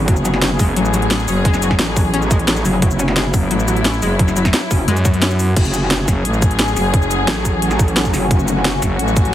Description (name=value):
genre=dark technical drum and bass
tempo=175 BPM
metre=4/4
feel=straight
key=F# minor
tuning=A4 = 440 Hz
part: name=dark symphonic string section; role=sustained chords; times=0.0-9.3 s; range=F#3 to G#4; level=-22 LUFS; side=left 2 dB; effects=sidechain pumping
part: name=metallic wobble bass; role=bass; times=0.0-8.8 s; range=F#1 to A1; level=-19 LUFS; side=equal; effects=distortion, chorus, overdrive
part: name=analog pluck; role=arpeggios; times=0.1-5.3 s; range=F#3 to C#4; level=-22 LUFS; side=left 3 dB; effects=chorus, vintage 12-bit sampler grit, sidechain pumping, tape echo
part: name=drum and bass drum kit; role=drums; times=0.1-9.3 s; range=cabasa, crash cymbal, hi-hat, snare drum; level=-20 LUFS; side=equal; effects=studio reverb
part: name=electronic kick drum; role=drums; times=0.1-9.2 s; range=none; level=-16 LUFS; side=equal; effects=overdrive, studio reverb
part: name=growling FM bass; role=bass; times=0.6-9.3 s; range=F#1 to F#2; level=-18 LUFS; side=equal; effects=none
part: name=deep dark ambient pad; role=texture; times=6.8-9.3 s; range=A3 to G#5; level=-24 LUFS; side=left 1 dB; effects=chorus, built-in reverb, sidechain pumping
room=light reverb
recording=heavily compressed radio sound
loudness=-13 LUFS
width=side -12 dB against mid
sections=0.0-5.6 A section; 5.6-9.3 A section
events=drop 0.0-5.6, 5.6-9.3; kick drops out 5.2-5.6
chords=0.0 F#madd9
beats=| 0.08 0.42 0.77 1.11 | 1.45 1.79 2.14 2.48 | 2.82 3.17 3.51 3.85 | 4.19 4.54 4.88 5.22 | 5.57 5.91 6.25 6.59 | 6.94 7.28 7.62 7.96 | 8.31 8.65 8.99 9.34